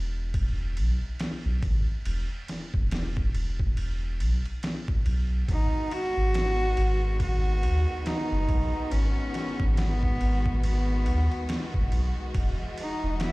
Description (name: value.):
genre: trip hop.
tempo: 70 BPM.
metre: 4/4.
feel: swing 59% on 16ths.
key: G# minor.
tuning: A4 = 440 Hz.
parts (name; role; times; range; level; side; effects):
soft dub sub bass; bass; 0.0-13.3 s; E1 to D#2; -26 LUFS; equal; none.
trip hop sampler-style drum kit; drums; 0.3-13.3 s; kick drum, ride cymbal, snare drum; -31 LUFS; equal; overdrive, small room reverb.
rich cello; melody; 5.5-13.3 s; B3 to F#4; -31 LUFS; equal; tape echo.
rich studio string section; sustained chords; 5.5-13.3 s; D#3 to D#5; -36 LUFS; left 1 dB; none.
room: small room ambience.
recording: played on a big sound system in a bare room, large studio reverb.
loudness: -24 LUFS.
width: side -22 dB against mid.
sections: 0.0-13.3 A section.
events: none.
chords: 0.0 E5; 5.5 G#m7; 12.3 Emaj9.